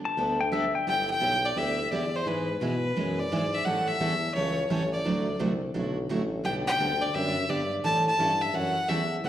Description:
country; 172 BPM; 4/4; swing 65% on 8ths; G major; A4 = 440 Hz
pedal steel guitar; second line; 0.1-0.9 s; E5 to A5; -27 LUFS; left 5 dB; slapback echo
picked steel-string acoustic guitar; accompaniment; 0.2-9.3 s; D3 to A4; -31 LUFS; right 3 dB; slapback echo
warm tuba; bass; 0.2-9.3 s; G1 to B2; -31 LUFS; left 1 dB
clear fiddle; melody; 0.9-9.3 s; B4 to A5; -27 LUFS; left 1 dB; slapback echo
moderate club reverb, RT60 0.5 s; live gig heard through the venue's PA, recital hall reverb; -25 LUFS; side -11 dB against mid
0.9-9.3 A section
0.0 Gadd9; 0.9 G6; 2.3 E/G#; 3.7 A7; 5.1 Dadd9; 6.4 G; 7.8 A7
0.17 0.52 | 0.87 1.22 1.57 1.92 | 2.27 2.61 2.96 3.31 | 3.66 4.01 4.36 4.71 | 5.05 5.40 5.75 6.10 | 6.45 6.80 7.15 7.50 | 7.84 8.19 8.54 8.89 | 9.24

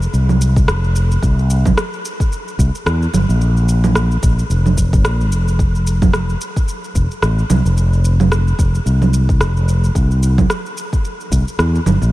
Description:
sunset chillout; 110 BPM; 4/4; swing 57% on 16ths; F major; A4 = 438 Hz
fretless electric bass; bass; 0.0-12.1 s; F1 to E2; -14 LUFS; equal
electronic shaker, congas and rim click; drums; 0.0-12.1 s; -20 LUFS; right 3 dB
electronic kick drum; drums; 0.6-11.4 s; -16 LUFS; equal
digital ambience; -13 LUFS; side -17 dB against mid
0.0-12.1 A section
0.14 0.68 | 1.23 1.77 2.32 2.86 | 3.41 3.95 4.50 5.04 | 5.59 6.14 6.68 7.23 | 7.77 8.32 8.86 9.41 | 9.95 10.50 11.04 11.59

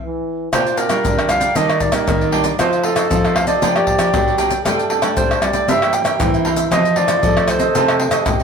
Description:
samba and choro; 116 BPM; 4/4; straight; Bb major; A4 = 441 Hz
breathy trombone; second line; 0.0-8.4 s; E3 to A4; -23 LUFS; right 3 dB
mellow clarinet; melody; 0.5-8.3 s; A4 to G5; -19 LUFS; right 1 dB
cavaquinho; accompaniment; 0.5-8.4 s; D4 to G5; -22 LUFS; right 5 dB
nylon-string guitar; accompaniment; 0.5-8.4 s; F2 to A4; -26 LUFS; left 4 dB
nylon-string guitar; bass; 0.5-8.4 s; G2 to G3; -23 LUFS; left 1 dB
maracas, surdo, pandeiro and tamborim; percussion; 0.5-8.4 s; -19 LUFS; left 2 dB
wet studio reverb, RT60 0.7 s; band playing live in one room; -14 LUFS; side -6 dB against mid
0.5-8.4 A section
band accent 0.0-0.5; drum fill 0.1-0.5
0.0 N.C.; 0.5 Bb6; 1.6 Ebmaj7; 2.6 F7; 3.6 Bb6/F; 4.7 Gsus2; 5.7 C7/G; 6.7 F7
0.01 | 0.53 1.04 1.56 2.08 | 2.59 3.11 3.62 4.14 | 4.65 5.17 5.69 6.20 | 6.72 7.23 7.75 8.27

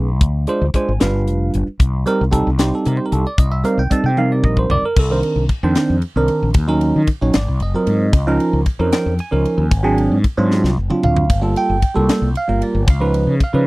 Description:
electric jazz fusion; 76 BPM (dotted quarters); 6/8; straight; A4 = 437 Hz
bell-like tine electric piano; accompaniment; 0.0-13.7 s; Eb3 to A5; -18 LUFS; right 2 dB; phaser
mellow fretless electric bass; bass; 0.0-13.7 s; F1 to Eb3; -18 LUFS; left 1 dB
tight funk drum kit; drums; 0.2-13.5 s; crash cymbal, hi-hat, kick drum, ride cymbal, snare drum, toms; -17 LUFS; left 1 dB
little or no reverb; dry, close 1970s-style studio recording; -14 LUFS; side -21 dB against mid
0.0-5.0 A section; 5.0-13.7 A section
drum fill 4.2-5.0, 10.5-11.3
0.2 Dm7b5; 1.0 G7; 1.8 Cm7; 5.0 Cm9; 6.6 Ebm7; 7.3 Ab13; 8.1 Db69; 9.7 Ab7#11; 11.3 Gm9; 12.9 Db9
| 0.21 1.01 | 1.80 2.59 | 3.38 4.18 | 4.97 5.76 | 6.55 7.35 | 8.14 8.93 | 9.72 10.51 | 11.30 12.09 | 12.88

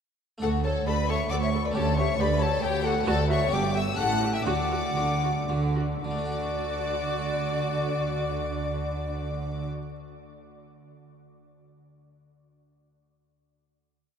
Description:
classical, baroque-style concerto movement with solo episodes; 108-137 BPM; 3/4; straight; D major; A4 = 440 Hz
hollow concert flute; melody; 0.4-9.7 s; A4 to A5; -31 LUFS; left 2 dB
rich chamber violin section; melody; 0.4-9.7 s; F#5 to F#6; -34 LUFS; left 5 dB
rich studio violin section; second line; 0.4-9.7 s; F#4 to F#5; -34 LUFS; left 4 dB
harpsichord; accompaniment; 0.4-10.0 s; D2 to D5; -35 LUFS; left 1 dB
warm chamber viola section; accompaniment; 0.4-9.7 s; F#4 to A4; -35 LUFS; right 2 dB
rich chamber double bass section; bass; 0.4-9.7 s; G1 to D2; -31 LUFS; right 3 dB
warm studio cello section; bass; 0.4-9.7 s; D2 to D3; -32 LUFS; right 3 dB
wet cathedral reverb, RT60 5.6 s; in a vast, echoing space; -24 LUFS; side -7 dB against mid
0.4-6.0 ritornello; 6.0-9.4 final chord
slowing down 2.4-6.0
0.4 D5; 1.8 A7/D; 3.1 D; 3.5 G; 4.0 A7; 4.5 D
| 0.43 0.87 1.31 | 1.75 2.19 2.63 | 3.07 3.52 3.98 | 4.46 4.96 5.49 | 6.04 6.59 7.15 | 7.70 8.26 8.81

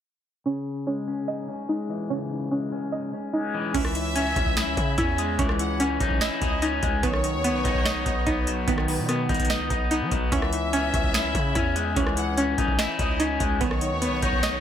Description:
hip hop, trap; 146 BPM; 4/4; half-time; C# minor; A4 = 441 Hz
electric guitar at the edge of break-up; accompaniment; 0.5-14.6 s; C#3 to D#5; -28 LUFS; left 2 dB
string-like resonator pluck; arpeggios; 0.5-14.6 s; B3 to D#6; -29 LUFS; right 1 dB; chorus, ping-pong delay
rich studio violin section; second line; 3.7-14.6 s; B4 to F#5; -32 LUFS; left 1 dB; ping-pong delay
glass harmonica; sustained chords; 3.7-14.6 s; B3 to G#5; -34 LUFS; left 1 dB
distorted 808-style bass; bass; 3.7-14.6 s; B1 to F#3; -30 LUFS; equal; distortion
booming analog drum machine; drums; 3.7-14.5 s; crash cymbal, finger snaps, hi-hat, kick drum, rim click, snare drum; -27 LUFS; equal; overdrive
little or no reverb; low-pass filter; -22 LUFS; side -9 dB against mid
0.5-3.7 A section; 3.7-14.6 B section
filter sweep 0.5-3.7
0.5 C#madd9; 7.0 B; 10.3 C#madd9; 13.6 B
| 0.46 0.87 1.28 1.69 | 2.10 2.51 2.92 3.33 | 3.75 4.16 4.57 4.98 | 5.39 5.80 6.21 6.62 | 7.03 7.44 7.86 8.27 | 8.68 9.09 9.50 9.91 | 10.32 10.73 11.14 11.55 | 11.96 12.38 12.79 13.20 | 13.61 14.02 14.43

